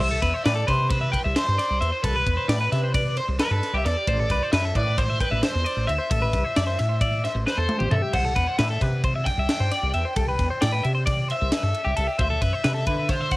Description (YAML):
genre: math rock and midwest emo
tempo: 266 BPM (eighths)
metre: 9/8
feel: straight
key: unclear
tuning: A4 = 440 Hz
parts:
  - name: crunchy overdriven guitar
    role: melody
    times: 0.0-13.4 s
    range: B4 to G5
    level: -27 LUFS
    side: equal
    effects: cassette tape
  - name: twelve-string electric guitar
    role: arpeggios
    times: 0.0-13.4 s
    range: G4 to G5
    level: -27 LUFS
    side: left 2 dB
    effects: cassette tape
  - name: woody fretless electric bass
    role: bass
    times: 0.0-13.3 s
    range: A1 to D3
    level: -25 LUFS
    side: equal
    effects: ensemble chorus
  - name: crisp fusion drum kit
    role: drums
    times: 0.2-13.4 s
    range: crash cymbal, kick drum, ride cymbal, snare drum, toms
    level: -27 LUFS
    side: equal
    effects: cassette tape
room: little or no reverb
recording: home recording on cassette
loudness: -21 LUFS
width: side -19 dB against mid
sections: 0.0-13.4 A section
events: drum fill 7.5-8.1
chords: 0.0 Cmaj7; 4.1 Am; 8.1 Cmaj7; 12.2 D7sus2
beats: | 0.00 0.23 0.45 0.68 0.90 1.13 1.36 1.58 1.81 | 2.04 2.26 2.49 2.71 2.94 3.17 3.39 3.62 3.84 | 4.07 4.29 4.52 4.75 4.97 5.20 5.42 5.65 5.88 | 6.10 6.33 6.55 6.78 7.00 7.23 7.46 7.68 7.91 | 8.13 8.36 8.58 8.81 9.03 9.26 9.48 9.71 9.94 | 10.16 10.39 10.61 10.84 11.06 11.29 11.51 11.74 11.96 | 12.19 12.41 12.64 12.87 13.09 13.32